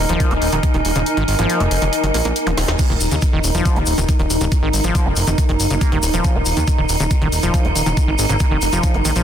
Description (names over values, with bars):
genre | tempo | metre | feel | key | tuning
psychedelic trance | 139 BPM | 4/4 | straight | unclear | A4 = 440 Hz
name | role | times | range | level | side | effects
swarming drone | sustained chords | 0.0-9.2 s | Eb4 | -24 LUFS | right 2 dB | built-in reverb, sidechain pumping
fat analog bass | bass | 0.0-9.2 s | Eb1 to Eb2 | -20 LUFS | equal | none
warbly tape-like pad | texture | 0.0-9.2 s | Eb4 to Bb5 | -24 LUFS | equal | chorus, built-in reverb, sidechain pumping
overdriven acid bass | riff | 0.1-9.2 s | Db3 to Eb4 | -24 LUFS | left 1 dB | auto-pan, cassette tape, sidechain pumping, tape echo
drum and bass drum kit | drums | 0.1-9.2 s | crash cymbal, hi-hat, snare drum | -26 LUFS | equal | overdrive, studio ambience
electronic kick drum | drums | 0.2-8.9 s | none | -17 LUFS | equal | overdrive, studio ambience
vowel-sweep wobble bass | second line | 1.4-1.6, 4.8-8.5 s | Bb3 | -34 LUFS | right 4 dB | none
zap | sound effects | 2.5-2.6 s | none | -30 LUFS | equal | none
tube shaker | percussion | 2.8-9.2 s | none | -26 LUFS | left 4 dB | none
room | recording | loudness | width
light reverb | dense, heavily limited modern master | -15 LUFS | side -9 dB against mid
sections
0.0-9.2 A section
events
kick drops out 1.1-2.8; drum fill 2.6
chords
0.0 Eb5